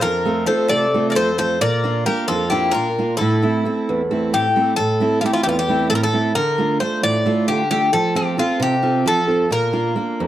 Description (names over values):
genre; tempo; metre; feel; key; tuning
greek folk, Greek bouzouki band; 266 BPM (eighths); 7/8; straight; A phrygian; A4 = 438 Hz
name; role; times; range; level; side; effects
Greek bouzouki; melody; 0.0-10.3 s; F4 to D5; -19 LUFS; left 2 dB; none
Greek bouzouki; second line; 0.0-4.3 s; E4 to Bb4; -25 LUFS; left 4 dB; none
picked steel-string acoustic guitar; accompaniment; 0.0-10.3 s; E2 to A4; -20 LUFS; right 3 dB; none
room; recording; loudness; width
small room ambience; dry, close 1970s-style studio recording; -16 LUFS; side -12 dB against mid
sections
0.0-4.8 A section; 4.8-10.3 A section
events
none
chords
0.0 F; 1.6 Bb; 3.2 Am; 6.3 Dm; 7.9 F; 9.5 Bb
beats
| 0.03 0.26 0.48 0.71 0.93 1.16 1.38 | 1.61 1.83 2.06 2.28 2.51 2.73 2.96 | 3.19 3.41 3.64 3.86 4.09 4.31 4.54 | 4.76 4.99 5.21 5.44 5.67 5.89 6.12 | 6.34 6.57 6.80 7.02 7.25 7.47 7.70 | 7.93 8.15 8.38 8.61 8.83 9.06 9.28 | 9.51 9.74 9.96 10.19